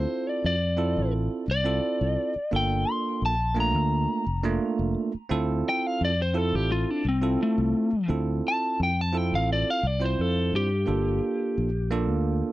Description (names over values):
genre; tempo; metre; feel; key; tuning
straight-eighth soul blues; 86 BPM; 4/4; straight; D minor; A4 = 440 Hz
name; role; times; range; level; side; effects
lightly driven lead guitar; melody; 0.0-11.9 s; A3 to C6; -27 LUFS; left 2 dB; none
bell-like tine electric piano; accompaniment; 0.0-12.5 s; A3 to C5; -29 LUFS; right 5 dB; none
fingered electric bass; bass; 0.0-12.4 s; F1 to G2; -26 LUFS; left 1 dB; none
room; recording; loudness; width
little or no reverb; dry, close 1970s-style studio recording; -23 LUFS; side -16 dB against mid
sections
0.0-12.5 A section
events
lead electric guitar solo 0.0-12.5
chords
0.0 Dm9; 2.5 Gm9; 5.3 Dm9 (rootless); 10.9 Gm9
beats
0.44 1.13 1.83 | 2.52 3.22 3.92 4.61 | 5.31 6.00 6.70 7.39 | 8.09 8.79 9.48 10.18 | 10.88 11.57 12.27